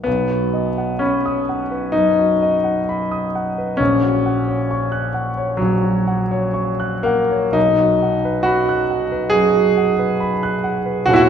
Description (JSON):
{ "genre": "classical, romantic nocturne for solo piano", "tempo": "57-70 BPM", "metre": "4/4", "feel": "rubato", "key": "B major", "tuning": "A4 = 441 Hz", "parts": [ { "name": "clear grand piano", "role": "solo", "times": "0.0-11.3 s", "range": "D#1 to F#6", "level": "-16 LUFS", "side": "equal", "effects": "none" } ], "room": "wet scoring stage reverb, RT60 1.6 s", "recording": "minimal, uncompressed stereo recording", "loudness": "-16 LUFS", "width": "side -8 dB against mid", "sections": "0.1-11.3 A section", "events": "none", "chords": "0.1 B; 3.8 F#/A#; 7.6 B" }